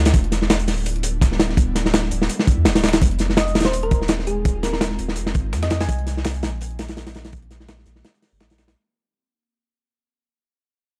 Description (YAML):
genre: drum and bass, jungle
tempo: 167 BPM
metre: 4/4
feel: swing 54% on 16ths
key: unclear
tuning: A4 = 440 Hz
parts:
  - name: ethereal airy pad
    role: sustained chords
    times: 0.2-8.7 s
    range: G3 to G4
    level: -35 LUFS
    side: equal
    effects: none
  - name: saturated sub bass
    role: bass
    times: 0.0-8.8 s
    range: D1 to F2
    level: -26 LUFS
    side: equal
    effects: tube saturation
  - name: breakbeat sampler-style drum kit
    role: drums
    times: 0.1-8.8 s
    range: hi-hat, snare drum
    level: -34 LUFS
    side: equal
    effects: none
  - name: crunchy breakbeat drum kit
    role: drums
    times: 0.1-8.8 s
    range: hi-hat, kick drum, snare drum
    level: -21 LUFS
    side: equal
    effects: none
  - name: thumb-piano-like synth pluck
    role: melody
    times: 3.4-5.9 s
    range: Ab4 to Ab5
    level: -30 LUFS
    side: equal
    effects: chorus, dub echo
room: small room ambience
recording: dry, gritty hardware recording, vinyl crackle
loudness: -20 LUFS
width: mono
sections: 0.0-8.8 A section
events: drop 0.0-8.8; fade-out 3.0-8.8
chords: 0.1 Em7; 3.0 Fm7; 5.9 Cm7